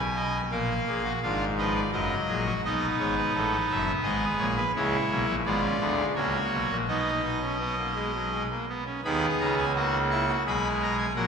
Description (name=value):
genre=classical, baroque-style 4-part fugue for pipe organ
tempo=85 BPM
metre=3/4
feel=straight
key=B major from 4.7 s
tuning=A4 = 440 Hz
part: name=pipe organ, trumpet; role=solo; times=0.0-11.3 s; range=F#1 to C#6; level=-25 LUFS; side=equal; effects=none
room=wet church reverb, RT60 3.5 s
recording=recorded in a church or concert hall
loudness=-25 LUFS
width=side -6 dB against mid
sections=0.5-9.0 A section; 9.0-11.3 B section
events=none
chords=0.0 G#m/B; 0.5 A#7; 1.9 D#m/F#; 2.6 B7; 4.0 G#madd9; 4.7 C#m7; 5.4 Fdim7/Ab; 6.1 F#/C#; 6.9 B; 10.4 G#madd9/B